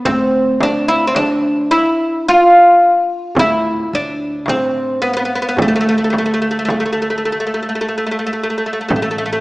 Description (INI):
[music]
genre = Arabic maqam ensemble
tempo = 108 BPM (eighths)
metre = 10/8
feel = straight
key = D minor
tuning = A4 = 440 Hz
[part]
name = oud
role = melody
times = 0.0-9.4 s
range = A3 to F4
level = -13 LUFS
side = equal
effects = none
[part]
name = upright bass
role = bass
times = 0.1-9.4 s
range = A1 to D2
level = -22 LUFS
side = right 1 dB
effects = none
[part]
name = darbuka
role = percussion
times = 0.1-9.2 s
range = none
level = -29 LUFS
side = left 1 dB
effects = none
[part]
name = frame drum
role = percussion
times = 0.1-9.2 s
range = none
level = -21 LUFS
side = right 1 dB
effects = none
[sound]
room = moderate scoring stage reverb, RT60 1.9 s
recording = recorded in a church or concert hall, small speaker sound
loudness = -13 LUFS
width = side -21 dB against mid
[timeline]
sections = 0.0-9.4 A section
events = none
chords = none